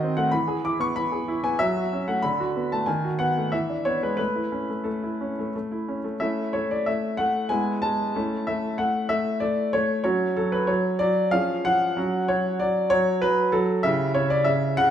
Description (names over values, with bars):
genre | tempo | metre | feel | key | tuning
classical-period piano sonatina | 88-97 BPM | 3/4 | rubato | A major | A4 = 439 Hz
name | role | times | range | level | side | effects
clear baby grand piano | solo | 0.0-14.9 s | C#3 to D6 | -22 LUFS | equal | none
room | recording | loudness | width
wet recital hall reverb, RT60 1.4 s | minimal, uncompressed stereo recording | -22 LUFS | side -9 dB against mid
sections
0.0-6.2 A section; 6.2-14.9 B section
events
none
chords
0.3 E; 1.6 F#m; 2.2 Bm7/D; 2.9 B7/D#; 3.5 E7; 4.2 A; 7.5 E/G#; 8.1 A; 10.1 F#5; 11.3 C#/E#; 12.0 F#5; 13.8 C#dim